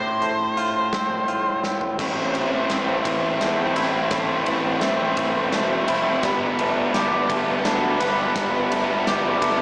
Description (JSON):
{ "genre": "post-rock", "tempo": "56 BPM (dotted quarters)", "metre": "6/8", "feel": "straight", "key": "unclear", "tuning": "A4 = 441 Hz", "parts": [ { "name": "octave-fuzz lead guitar", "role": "melody", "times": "0.0-1.6 s", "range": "C5", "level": "-24 LUFS", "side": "equal", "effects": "distortion, slapback echo, digital delay" }, { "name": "twangy electric guitar", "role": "arpeggios", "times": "0.0-9.6 s", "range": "A2 to B4", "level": "-25 LUFS", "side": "equal", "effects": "digital delay" }, { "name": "fuzz picked electric bass", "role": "bass", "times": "0.0-9.6 s", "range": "E1 to A2", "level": "-28 LUFS", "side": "equal", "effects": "overdrive" }, { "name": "huge arena drum kit", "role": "drums", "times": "0.2-9.6 s", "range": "crash cymbal, hi-hat, kick drum, ride cymbal, snare drum, toms", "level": "-29 LUFS", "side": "equal", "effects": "none" }, { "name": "overdriven electric guitar", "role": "riff", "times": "2.0-9.6 s", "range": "G3 to C4", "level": "-22 LUFS", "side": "equal", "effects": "none" } ], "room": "wet concert hall reverb, RT60 2.0 s, small room ambience", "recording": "big arena sound, small speaker sound", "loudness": "-19 LUFS", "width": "side -30 dB against mid", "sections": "0.0-2.0 A section; 2.0-9.6 B section", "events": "drum fill 1.6-2.0, 2.0-9.6; build-up 2.0-9.6", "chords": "0.0 F/A; 2.0 Am; 6.2 Gadd9" }